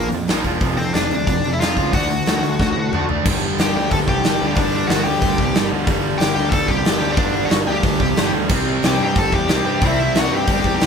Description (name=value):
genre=punk rock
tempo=183 BPM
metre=4/4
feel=straight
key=unclear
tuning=A4 = 440 Hz
part: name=smooth overdriven lead guitar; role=melody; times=0.0-10.9 s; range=C4 to A5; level=-22 LUFS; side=left 2 dB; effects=none
part: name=overdriven electric guitar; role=riff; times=0.0-10.9 s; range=F2 to D4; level=-24 LUFS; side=right 7 dB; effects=none
part: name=overdriven semi-hollow guitar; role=riff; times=0.0-10.9 s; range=F2 to D4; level=-25 LUFS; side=left 5 dB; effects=none
part: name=fuzz picked electric bass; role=bass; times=0.0-10.9 s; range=E1 to A2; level=-24 LUFS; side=equal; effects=overdrive
part: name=big rock drum kit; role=drums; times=0.1-10.9 s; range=crash cymbal, hi-hat, kick drum, snare drum, toms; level=-20 LUFS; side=equal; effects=none
part: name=sludgy distorted guitar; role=riff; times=3.2-10.9 s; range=G2 to C4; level=-27 LUFS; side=left 2 dB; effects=none
room=moderate studio reverb, RT60 0.7 s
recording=band playing live in one room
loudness=-16 LUFS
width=side -6 dB against mid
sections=0.0-3.3 A section; 3.3-10.9 B section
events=drum fill 2.6-3.3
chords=0.0 Bb5; 0.6 F5; 1.9 D; 3.3 G5; 8.5 C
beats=0.28 | 0.61 0.94 1.27 1.60 | 1.93 2.26 2.59 2.92 | 3.25 3.58 3.91 4.24 | 4.57 4.90 5.23 5.56 | 5.88 6.21 6.54 6.87 | 7.20 7.53 7.85 8.18 | 8.51 8.84 9.17 9.49 | 9.82 10.15 10.48 10.81